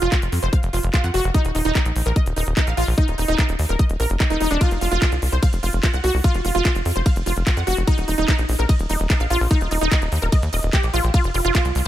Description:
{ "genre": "psychedelic trance", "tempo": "147 BPM", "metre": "4/4", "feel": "straight", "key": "unclear", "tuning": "A4 = 440 Hz", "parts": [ { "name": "wide unison pluck", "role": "riff", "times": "0.0-11.9 s", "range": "D4 to Gb5", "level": "-23 LUFS", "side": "right 2 dB", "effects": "auto-pan, sidechain pumping, digital delay" }, { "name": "tight sequencer bass", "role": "bass", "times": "0.0-11.9 s", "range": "Eb1 to F2", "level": "-21 LUFS", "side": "equal", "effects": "none" }, { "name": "drum and bass drum kit", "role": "drums", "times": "0.0-11.9 s", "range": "handclaps, hi-hat, ride cymbal", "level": "-28 LUFS", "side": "left 1 dB", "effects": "none" }, { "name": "electronic kick drum", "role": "drums", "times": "0.1-11.6 s", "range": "none", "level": "-17 LUFS", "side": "equal", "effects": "none" } ], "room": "digital ambience", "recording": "none", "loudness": "-17 LUFS", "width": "side -13 dB against mid", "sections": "0.0-11.9 A section", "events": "none", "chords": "0.0 F5; 1.3 Eb5; 4.6 F5; 7.9 Eb5; 11.1 F5", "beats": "0.12 0.53 0.94 | 1.34 1.75 2.16 2.57 | 2.98 3.38 3.79 4.20 | 4.61 5.02 5.43 5.83 | 6.24 6.65 7.06 7.47 | 7.88 8.28 8.69 9.10 | 9.51 9.92 10.32 10.73 | 11.14 11.55" }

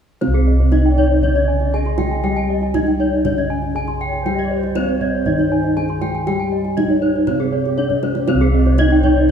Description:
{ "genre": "Balinese gamelan", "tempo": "119 BPM", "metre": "4/4", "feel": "straight", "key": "C pelog", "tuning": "A4 = 440 Hz", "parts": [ { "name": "gamelan-type bronze metallophone", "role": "melody", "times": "0.2-9.3 s", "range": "C4 to Ab4", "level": "-20 LUFS", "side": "right 1 dB", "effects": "none" }, { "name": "gamelan-type bronze metallophone", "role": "accompaniment", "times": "0.2-9.3 s", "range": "C3 to G3", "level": "-26 LUFS", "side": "equal", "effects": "none" }, { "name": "gamelan-type bronze metallophone", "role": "arpeggios", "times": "0.2-9.2 s", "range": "Ab4 to Ab5", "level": "-24 LUFS", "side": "left 4 dB", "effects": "none" }, { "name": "gamelan-type bossed gongs", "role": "bass", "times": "0.2-9.3 s", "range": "C2 to G4", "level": "-19 LUFS", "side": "equal", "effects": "none" }, { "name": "kendang", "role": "percussion", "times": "0.2-9.3 s", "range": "none", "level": "-26 LUFS", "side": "right 2 dB", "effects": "none" }, { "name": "gamelan-type bronze metallophone", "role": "arpeggios", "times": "0.5-9.3 s", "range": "Ab4 to C6", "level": "-28 LUFS", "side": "right 3 dB", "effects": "none" }, { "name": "bansuri", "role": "second line", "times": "0.9-9.3 s", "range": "G4 to Eb5", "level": "-28 LUFS", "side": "right 1 dB", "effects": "none" } ], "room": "moderate scoring stage reverb, RT60 1.6 s", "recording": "recorded in a church or concert hall", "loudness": "-15 LUFS", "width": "side -7 dB against mid", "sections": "0.2-9.3 A section", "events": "drum fill 7.9-8.3", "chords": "none", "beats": "| 0.22 0.73 1.23 1.74 | 2.24 2.74 3.25 3.75 | 4.26 4.76 5.26 5.77 | 6.27 6.78 7.28 7.79 | 8.29 8.79 9.30" }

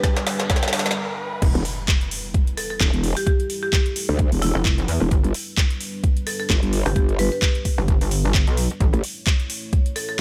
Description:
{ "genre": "bass house", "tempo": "130 BPM", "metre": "4/4", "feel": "swing 56% on 16ths", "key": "E minor", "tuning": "A4 = 440 Hz", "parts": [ { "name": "dark analog pad", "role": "sustained chords", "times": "0.0-10.2 s", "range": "G3 to C#5", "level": "-37 LUFS", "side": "equal", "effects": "chorus, sidechain pumping" }, { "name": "electronic kick drum", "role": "drums", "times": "0.0-9.8 s", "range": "none", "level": "-22 LUFS", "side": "equal", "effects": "overdrive, small room ambience" }, { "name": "garage drum kit", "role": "drums", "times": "0.0-10.1 s", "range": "crash cymbal, handclaps, hi-hat, snare drum", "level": "-28 LUFS", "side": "equal", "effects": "overdrive, small room ambience" }, { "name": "riser, noise sweep and impact", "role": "sound effects", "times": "0.0-3.3 s", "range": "none", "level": "-33 LUFS", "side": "equal", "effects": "none" }, { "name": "deep dark ambient pad", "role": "texture", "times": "0.0-1.0 s", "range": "D4 to G5", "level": "-44 LUFS", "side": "equal", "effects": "none" }, { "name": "metallic wobble bass", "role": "bass", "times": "0.2-1.5, 4.6-8.9 s", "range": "E1 to G2", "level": "-25 LUFS", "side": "equal", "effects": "chorus, tube saturation, sidechain pumping, high-pass filter" }, { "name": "growl bass", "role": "bass", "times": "1.6-9.0 s", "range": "E1 to D2", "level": "-23 LUFS", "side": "equal", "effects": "chorus, tube saturation, sidechain pumping" }, { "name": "marimba with hard mallets", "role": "melody", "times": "2.6-10.2 s", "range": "E4 to B4", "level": "-31 LUFS", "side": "equal", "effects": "delay" } ], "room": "little or no reverb", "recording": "none", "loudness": "-21 LUFS", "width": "mono", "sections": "0.0-1.4 A section; 1.4-10.2 B section", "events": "build-up 0.0-1.4; drum fill 0.0-1.0; riser 0.0-1.4; noise sweep 0.0-1.4; filter sweep on analog synth pad 0.0-1.4; stop 1.0-1.4; drop 1.4-10.2; impact 1.4-3.3", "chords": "0.0 G; 1.4 Em; 5.1 G; 8.8 A", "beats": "0.04 0.50 0.96 | 1.42 1.88 2.34 2.81 | 3.27 3.73 4.19 4.65 | 5.11 5.58 6.04 6.50 | 6.96 7.42 7.88 8.34 | 8.80 9.27 9.73 10.19" }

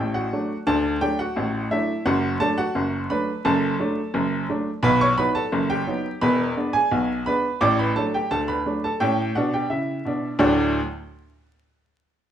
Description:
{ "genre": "ragtime piano", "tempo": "86 BPM", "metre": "2/4", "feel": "straight", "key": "D major", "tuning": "A4 = 441 Hz", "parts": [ { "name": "clear upright piano", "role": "solo", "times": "0.0-10.8 s", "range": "E1 to D6", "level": "-20 LUFS", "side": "equal", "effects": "none" } ], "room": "moderate large studio reverb, RT60 0.9 s", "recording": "band playing live in one room, vinyl crackle", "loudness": "-20 LUFS", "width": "side -10 dB against mid", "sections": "0.0-10.4 A section; 10.4-11.8 B section", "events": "none", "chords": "0.0 D; 2.1 D/F#; 4.8 B7; 6.2 E7; 7.6 D/A; 9.0 A7; 10.4 D", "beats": "| 0.66 1.36 | 2.05 2.75 | 3.45 4.14 | 4.83 5.53 | 6.22 6.91 | 7.61 8.30 | 9.00 9.70 | 10.40" }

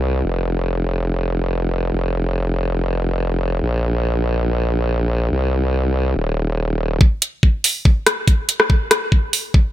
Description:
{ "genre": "heavy wobble dubstep", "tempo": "142 BPM", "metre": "4/4", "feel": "half-time", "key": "unclear", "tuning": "A4 = 440 Hz", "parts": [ { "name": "formant-sweep wobble bass", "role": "bass", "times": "0.0-7.0 s", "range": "Eb1 to C2", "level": "-18 LUFS", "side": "equal", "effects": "chorus, overdrive" }, { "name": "electronic kick drum", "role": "drums", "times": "7.0-9.6 s", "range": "none", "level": "-13 LUFS", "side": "equal", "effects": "none" }, { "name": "dubstep drum kit", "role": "drums", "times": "7.2-9.4 s", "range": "hi-hat, rim click", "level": "-16 LUFS", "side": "equal", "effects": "high-pass filter on hats, high-pass filter on snare, high-pass filter on room" } ], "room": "little or no reverb", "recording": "none", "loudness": "-16 LUFS", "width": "side -13 dB against mid", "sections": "0.0-7.0 A section; 7.0-9.7 B section", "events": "build-up 7.0-9.7", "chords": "none", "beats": "| 0.25 0.67 1.09 1.51 | 1.94 2.36 2.78 3.21 | 3.63 4.05 4.47 4.89 | 5.32 5.74 6.16 6.59 | 7.01 7.43 7.85 8.28 | 8.70 9.12 9.54" }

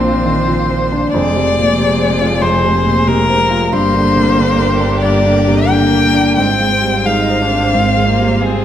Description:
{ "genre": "neoclassical piano and strings", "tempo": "92 BPM", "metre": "4/4", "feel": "rubato", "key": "F dorian", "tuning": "A4 = 440 Hz", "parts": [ { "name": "warm violin", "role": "melody", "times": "0.0-8.6 s", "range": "Ab4 to G5", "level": "-15 LUFS", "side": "left 3 dB", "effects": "none" }, { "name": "dark viola", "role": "accompaniment", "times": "0.0-8.6 s", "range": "Ab3 to Eb4", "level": "-20 LUFS", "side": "right 3 dB", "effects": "none" }, { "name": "felt-muted upright piano", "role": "accompaniment", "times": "0.0-8.6 s", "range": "F2 to C5", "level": "-16 LUFS", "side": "right 1 dB", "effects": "none" }, { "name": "rich chamber string section", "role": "sustained chords", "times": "0.0-8.6 s", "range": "C4 to C5", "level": "-23 LUFS", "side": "right 1 dB", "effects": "none" }, { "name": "warm double bass", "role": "bass", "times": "0.0-8.6 s", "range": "F1 to Bb1", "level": "-19 LUFS", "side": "equal", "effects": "none" } ], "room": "wet recital hall reverb, RT60 1.5 s", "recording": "recorded in a church or concert hall", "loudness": "-11 LUFS", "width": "side -10 dB against mid", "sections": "0.0-8.6 A section", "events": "none", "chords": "0.0 Bbadd9; 1.1 Fm; 3.7 Gm; 6.4 Fm/Ab", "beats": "0.49 | 1.14 1.79 2.44 3.09 | 3.73 4.38 5.03 5.71 | 6.38 7.06 7.74 8.41" }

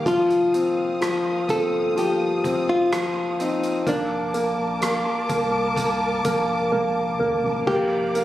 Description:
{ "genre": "pop ballad", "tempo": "63 BPM", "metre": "4/4", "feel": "straight", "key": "unclear", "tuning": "A4 = 440 Hz", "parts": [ { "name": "clear grand piano", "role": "accompaniment", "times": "0.0-8.2 s", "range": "F3 to C4", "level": "-23 LUFS", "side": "left 1 dB", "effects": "none" }, { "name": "warm studio string section", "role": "sustained chords", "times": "0.0-8.2 s", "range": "Bb3 to Eb6", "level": "-29 LUFS", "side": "equal", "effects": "none" }, { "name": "saturated sub bass", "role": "bass", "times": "0.0-8.2 s", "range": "F1 to C2", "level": "-35 LUFS", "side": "equal", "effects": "none" }, { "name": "nylon-string guitar", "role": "melody", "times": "0.1-8.2 s", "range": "D4 to A4", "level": "-23 LUFS", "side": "equal", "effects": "tape echo" }, { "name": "soft-mallet drum kit", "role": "drums", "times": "0.1-8.2 s", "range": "crash cymbal, hi-hat, kick drum, rim click, toms", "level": "-31 LUFS", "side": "right 1 dB", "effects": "none" } ], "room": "light reverb, studio reverb", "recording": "recorded on a phone in the room, compression", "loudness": "-20 LUFS", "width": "side -14 dB against mid", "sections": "0.0-7.7 A section", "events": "drum fill 6.7-7.7", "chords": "0.1 F7sus4; 3.9 Bbmaj7; 7.7 Bb", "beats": "| 0.06 1.01 1.96 2.91 | 3.87 4.82 5.77 6.72 | 7.68" }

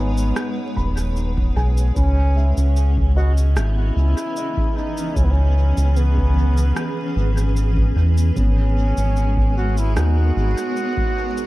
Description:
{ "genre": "ambient dub", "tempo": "75 BPM", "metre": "4/4", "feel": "straight", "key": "unclear", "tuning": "A4 = 440 Hz", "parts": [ { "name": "warm trombone", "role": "melody", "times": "0.0-11.5 s", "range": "B3 to F#4", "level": "-27 LUFS", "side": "right 1 dB", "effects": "dub echo" }, { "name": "granular cloud pad", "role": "sustained chords", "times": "0.0-11.5 s", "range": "E3 to F#5", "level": "-28 LUFS", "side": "equal", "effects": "built-in reverb" }, { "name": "felt-muted upright piano", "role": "arpeggios", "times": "0.0-11.5 s", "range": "B3 to B5", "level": "-31 LUFS", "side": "equal", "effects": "dub echo" }, { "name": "round analog bass", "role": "bass", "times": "0.0-10.5 s", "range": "D#1 to E2", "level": "-17 LUFS", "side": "equal", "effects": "tube saturation" }, { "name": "electronic shaker and rim click", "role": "drums", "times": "0.2-11.5 s", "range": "none", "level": "-33 LUFS", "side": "right 1 dB", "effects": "dub echo" }, { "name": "electronic kick drum", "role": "drums", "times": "0.8-11.1 s", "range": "none", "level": "-23 LUFS", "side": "equal", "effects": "none" } ], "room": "digital ambience", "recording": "echo-heavy mix, vinyl crackle", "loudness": "-16 LUFS", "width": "side -18 dB against mid", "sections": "0.0-11.5 A section", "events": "none", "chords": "0.0 G#m7; 2.0 C#m7; 8.4 G#m11", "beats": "0.36 1.16 | 1.96 2.76 3.56 4.36 | 5.16 5.96 6.76 7.56 | 8.36 9.16 9.96 10.76" }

